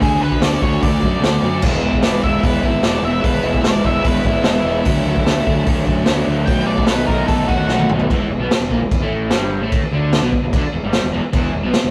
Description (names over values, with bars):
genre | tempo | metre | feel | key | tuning
garage rock duo or trio | 148 BPM | 4/4 | straight | E mixolydian | A4 = 440 Hz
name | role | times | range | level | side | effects
octave-fuzz lead guitar | melody | 0.0-7.9 s | E4 to G5 | -26 LUFS | equal | distortion
crunchy overdriven guitar | riff | 0.0-11.9 s | E2 to F#4 | -21 LUFS | equal | none
fuzz fingered electric bass | bass | 0.0-11.9 s | E1 to F#2 | -24 LUFS | equal | overdrive
vintage drum kit | drums | 0.0-11.8 s | crash cymbal, hi-hat, kick drum, snare drum, toms | -21 LUFS | equal | none
room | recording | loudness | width
moderate stone room reverb, RT60 1.3 s | rough rehearsal-room recording, warm saturation | -17 LUFS | mono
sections
0.0-8.1 A section; 8.1-11.9 B section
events
drum fill 7.7-8.1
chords
0.0 D; 1.6 E; 4.9 D; 6.5 B7; 8.1 E5